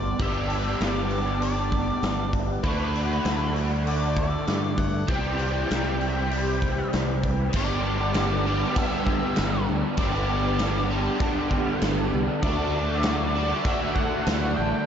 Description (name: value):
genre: rock, shoegaze and dream pop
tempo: 98 BPM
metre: 4/4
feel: straight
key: G major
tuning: A4 = 442 Hz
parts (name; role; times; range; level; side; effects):
- octave-fuzz lead guitar; melody; 0.0-14.9 s; B4 to G5; -32 LUFS; left 2 dB; distortion, ping-pong delay
- overdriven electric guitar; riff; 0.0-14.9 s; G2 to G4; -26 LUFS; equal; ensemble chorus
- modern bright fingered electric bass; bass; 0.0-14.7 s; G1 to G2; -28 LUFS; equal; none
- huge arena drum kit; drums; 0.2-14.4 s; crash cymbal, hi-hat, kick drum, snare drum; -29 LUFS; equal; none
room: moderate plate reverb, RT60 2.2 s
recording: dreamy mix soaked in reverb, nothing above 7.7 kHz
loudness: -22 LUFS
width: side -8 dB against mid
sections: 0.0-7.5 A section; 7.5-14.9 B section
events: none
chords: 0.0 G; 2.6 D6; 5.1 C; 7.5 G; 12.4 D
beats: | 0.20 0.81 1.42 2.03 | 2.65 3.26 3.87 4.48 | 5.09 5.71 6.32 6.93 | 7.54 8.16 8.77 9.38 | 9.99 10.60 11.22 11.83 | 12.44 13.05 13.66 14.27